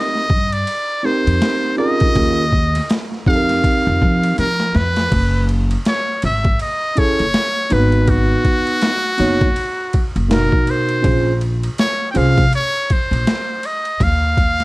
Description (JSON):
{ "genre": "hip hop, jazz-hop", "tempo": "81 BPM", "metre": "4/4", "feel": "swing 59% on 16ths", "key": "unclear", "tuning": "A4 = 440 Hz", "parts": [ { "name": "trumpet with metal mute", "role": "melody", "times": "0.0-14.6 s", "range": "Gb4 to G5", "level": "-19 LUFS", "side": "equal", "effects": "none" }, { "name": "mellow tine electric piano", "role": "accompaniment", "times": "0.0-12.4 s", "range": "Cb3 to Db5", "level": "-19 LUFS", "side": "right 1 dB", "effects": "plate reverb" }, { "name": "boom bap sampler-style drum kit", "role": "drums", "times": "0.2-14.6 s", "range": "crash cymbal, hi-hat, kick drum, ride cymbal, snare drum", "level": "-20 LUFS", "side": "equal", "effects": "overdrive" }, { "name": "upright bass", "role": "bass", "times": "0.3-14.6 s", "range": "Gb1 to F3", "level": "-18 LUFS", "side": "equal", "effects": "none" } ], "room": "light reverb", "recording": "dark, warm production, vinyl crackle", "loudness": "-14 LUFS", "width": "side -20 dB against mid", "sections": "0.0-5.1 A section; 5.1-14.6 B section", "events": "drum fill 4.4-5.1", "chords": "0.0 F9sus4; 2.2 Eb9sus4; 3.3 F9sus4; 5.1 Gbm9; 7.7 Abm9; 11.0 Bbm9; 14.0 Ebsus2" }